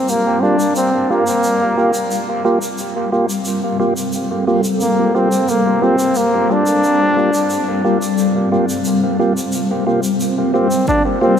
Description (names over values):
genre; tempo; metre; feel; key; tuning
ambient dub; 89 BPM; 4/4; straight; G minor; A4 = 440 Hz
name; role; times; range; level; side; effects
clear trombone; melody; 0.0-11.4 s; Bb3 to D4; -17 LUFS; equal; dub echo
granular cloud pad; sustained chords; 0.0-11.4 s; G3 to D5; -19 LUFS; left 2 dB; built-in reverb
shaker; drums; 0.1-11.0 s; none; -29 LUFS; equal; small room ambience
tonewheel organ; stabs; 0.4-11.4 s; Bb3 to G4; -19 LUFS; right 2 dB; slow rotary speaker, low-pass filter, dub echo
electronic kick drum; drums; 10.9-11.0 s; none; -21 LUFS; equal; small room ambience
room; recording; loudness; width
wet echo chamber reverb, RT60 2.4 s; none; -14 LUFS; side -8 dB against mid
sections
0.0-10.9 A section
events
none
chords
0.0 Gm7